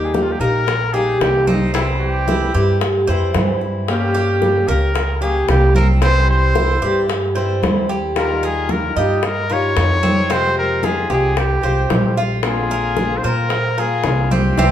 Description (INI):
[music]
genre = latin, Cuban son and guajira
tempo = 112 BPM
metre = 4/4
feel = straight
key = unclear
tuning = A4 = 440 Hz
[part]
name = warm trumpet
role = melody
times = 0.0-14.7 s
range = Eb4 to Db5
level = -21 LUFS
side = equal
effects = none
[part]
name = fingerpicked swing-style acoustic guitar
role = accompaniment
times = 0.0-14.7 s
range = C3 to G4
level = -22 LUFS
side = left 3 dB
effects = none
[part]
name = Cuban tres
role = arpeggios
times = 0.0-14.7 s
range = C4 to Eb5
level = -23 LUFS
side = right 3 dB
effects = none
[part]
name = upright bass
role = bass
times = 0.0-14.7 s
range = Bb1 to Bb2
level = -19 LUFS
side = equal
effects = none
[part]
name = bongos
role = percussion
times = 0.1-14.7 s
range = none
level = -24 LUFS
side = left 4 dB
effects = none
[part]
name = congas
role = percussion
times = 0.1-14.7 s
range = none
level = -25 LUFS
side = equal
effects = none
[sound]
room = wet large studio reverb, RT60 0.9 s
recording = band playing live in one room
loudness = -15 LUFS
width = side -10 dB against mid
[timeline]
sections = 0.0-14.7 A section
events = none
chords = 0.0 Eb; 1.7 C; 3.9 Gdim; 6.0 C; 8.2 Ebadd9; 10.3 Fmadd9; 12.4 Bbadd9